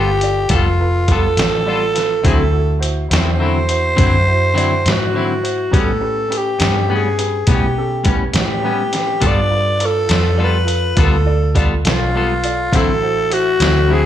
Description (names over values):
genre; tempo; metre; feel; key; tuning
slow blues; 69 BPM (dotted quarters); 12/8; straight; unclear; A4 = 441 Hz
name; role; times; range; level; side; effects
growling tenor saxophone; melody; 0.0-14.1 s; F4 to D5; -18 LUFS; equal; plate reverb, slapback echo
clean electric guitar; accompaniment; 0.0-14.1 s; A2 to A4; -22 LUFS; left 5 dB; harmonic tremolo, plate reverb, slapback echo
clear upright piano; accompaniment; 0.0-14.1 s; C#4 to D5; -25 LUFS; right 6 dB; plate reverb, slapback echo
vintage muted fingered electric bass; bass; 0.0-14.1 s; F1 to B2; -18 LUFS; equal; none
lo-fi sampler-style drum kit; drums; 0.2-13.8 s; hi-hat, kick drum, snare drum; -18 LUFS; equal; none
room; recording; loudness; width
light reverb; live gig heard through the venue's PA, club reverb; -13 LUFS; side -11 dB against mid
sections
0.0-14.1 A section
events
none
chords
0.0 G9; 2.2 D9; 5.7 A9; 9.2 G9; 12.7 D9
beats
0.50 1.37 | 2.25 3.12 3.99 4.87 | 5.74 6.61 7.49 8.36 | 9.23 10.11 10.98 11.86 | 12.73 13.61